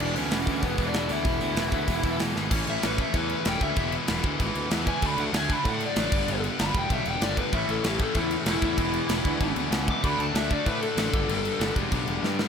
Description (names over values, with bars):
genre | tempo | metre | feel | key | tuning
punk rock | 191 BPM | 4/4 | straight | unclear | A4 = 440 Hz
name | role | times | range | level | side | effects
dark smooth lead guitar | melody | 0.0-11.7 s | B3 to D6 | -30 LUFS | left 1 dB | overdrive
distorted electric guitar | riff | 0.0-12.5 s | G2 to E4 | -32 LUFS | left 15 dB | overdrive
raw garage guitar | riff | 0.0-2.4, 7.5-12.4 s | E2 to D4 | -34 LUFS | left 1 dB | overdrive
tight distorted guitar | riff | 0.0-12.5 s | E2 to D4 | -33 LUFS | right 11 dB | distortion
fuzz picked electric bass | bass | 0.0-12.4 s | E1 to A2 | -31 LUFS | equal | overdrive
tight metal drum kit | drums | 0.0-12.5 s | crash cymbal, hi-hat, kick drum, snare drum | -28 LUFS | equal | none
room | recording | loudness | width
little or no reverb | none | -23 LUFS | side -7 dB against mid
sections
0.0-2.5 A section; 2.5-12.5 B section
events
drum fill 2.4, 12.2; lead electric guitar solo 2.5-12.5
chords
0.0 E; 2.5 A; 3.8 E; 5.0 D; 6.1 G; 7.5 A; 8.8 E; 10.0 D; 11.1 G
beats
| 0.00 0.31 0.63 0.94 | 1.25 1.57 1.88 2.20 | 2.51 2.83 3.14 3.45 | 3.77 4.08 4.39 4.71 | 5.02 5.33 5.65 5.96 | 6.27 6.59 6.90 7.21 | 7.53 7.84 8.16 8.47 | 8.78 9.10 9.41 9.72 | 10.04 10.35 10.66 10.98 | 11.29 11.60 11.92 12.23